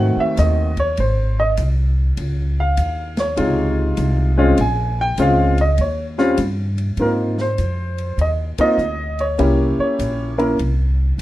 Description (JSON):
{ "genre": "jazz piano trio", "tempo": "100 BPM", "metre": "4/4", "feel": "swing 67% on 8ths", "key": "Ab major", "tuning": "A4 = 445 Hz", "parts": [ { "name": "clear grand piano", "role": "melody", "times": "0.0-10.6 s", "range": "C3 to Ab5", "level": "-18 LUFS", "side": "equal", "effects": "plate reverb" }, { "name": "upright bass", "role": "bass", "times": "0.0-11.2 s", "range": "Ab1 to Ab2", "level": "-19 LUFS", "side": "equal", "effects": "none" }, { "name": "open jazz drum kit", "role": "drums", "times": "0.4-11.2 s", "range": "hi-hat, kick drum, ride cymbal, snare drum", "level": "-34 LUFS", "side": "left 1 dB", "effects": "none" } ], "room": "light reverb", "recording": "rough home demo mix, lossy compression artefacts", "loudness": "-16 LUFS", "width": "side -15 dB against mid", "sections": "0.0-7.0 A section; 7.0-11.2 B section", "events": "grand piano solo 0.0-7.0; band accent 8.5-8.8", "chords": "0.0 Ab7b9; 2.2 Dbmaj9; 4.6 Bbm9; 5.8 Eb7; 7.0 Ab69; 9.4 C7b9" }